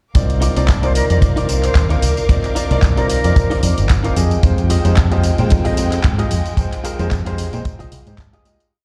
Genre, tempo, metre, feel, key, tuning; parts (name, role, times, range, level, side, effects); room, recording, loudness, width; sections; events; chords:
nu-disco, nu disco; 112 BPM; 4/4; swing 55% on 16ths; C minor; A4 = 440 Hz
clear concert grand piano; accompaniment; 0.1-8.7 s; Ab3 to G5; -26 LUFS; equal; tape echo
clear chamber violin section; sustained chords; 0.1-8.7 s; Ab3 to D6; -32 LUFS; equal; sidechain pumping
fingered electric bass with an envelope filter; bass; 0.1-8.1 s; G1 to Bb2; -19 LUFS; equal
kick drum; drums; 0.1-8.3 s; -16 LUFS; equal; small room ambience
pop drum kit; drums; 0.1-8.7 s; handclaps, hi-hat, tambourine; -30 LUFS; equal; small room ambience
direct-recorded clean electric guitar; riff; 0.4-8.7 s; Eb4 to Eb5; -28 LUFS; equal; lush chorus, vintage 12-bit sampler grit, tape echo
bright reedy silver concert flute; melody; 0.8-3.6 s; Bb4 to C5; -28 LUFS; equal; tape echo
small room ambience; played on a big sound system in a bare room, large studio reverb; -16 LUFS; mono
0.1-8.7 drop
drop 0.1-8.7; fade-out 5.9-8.7
0.1 Cm11; 4.2 Fm9